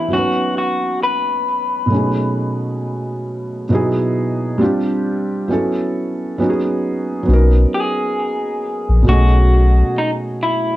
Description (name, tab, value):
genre	lo-fi hip hop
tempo	67 BPM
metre	4/4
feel	swing 58% on 16ths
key	B major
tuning	A4 = 440 Hz
part	electric guitar through a small old amp	melody	0.0-10.8 s	D#4 to B4	-19 LUFS	left 2 dB	low-pass filter, plate reverb
part	felt-muted upright piano	accompaniment	0.0-10.8 s	B2 to D#5	-18 LUFS	right 1 dB	low-pass filter, plate reverb
part	saturated sub bass	bass	7.3-9.8 s	A#1 to B1	-11 LUFS	equal	none
room	moderate small room reverb, RT60 0.5 s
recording	cassette tape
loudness	-15 LUFS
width	side -15 dB against mid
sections	0.0-7.3 A section; 7.3-10.8 B section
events	none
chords	0.1 Badd9; 1.9 B13; 3.7 Emaj7/B; 4.6 Gadd11; 5.5 A69; 6.4 B69; 7.3 Bmaj9; 9.1 B13